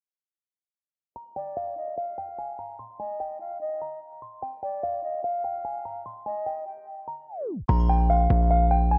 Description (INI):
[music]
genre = hip hop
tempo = 147 BPM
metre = 4/4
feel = half-time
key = unclear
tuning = A4 = 440 Hz
[part]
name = delicate synth tine bell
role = melody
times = 1.2-9.0 s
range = F5 to C6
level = -32 LUFS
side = equal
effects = chorus, low-pass filter, delay
[part]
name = breathy bright jazz flute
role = second line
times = 1.4-6.9 s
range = D5 to G5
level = -38 LUFS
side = equal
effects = delay
[part]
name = hard-hitting 808-style bass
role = bass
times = 7.7-9.0 s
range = Bb1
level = -23 LUFS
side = equal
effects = none
[sound]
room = light reverb, studio ambience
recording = worn, warbling old tape, cassette tape, warbly pitch drift, low-pass filter, tape stop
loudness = -28 LUFS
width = mono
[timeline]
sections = 1.2-7.7 A section; 7.7-9.0 B section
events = filter sweep 1.2-7.7; tape stop 7.3-7.7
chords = 1.2 N.C.; 7.7 Bb5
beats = | 1.16 1.57 1.98 2.38 | 2.79 3.20 3.61 4.02 | 4.42 4.83 5.24 5.65 | 6.06 6.46 6.87 7.28 | 7.69 8.10 8.51 8.91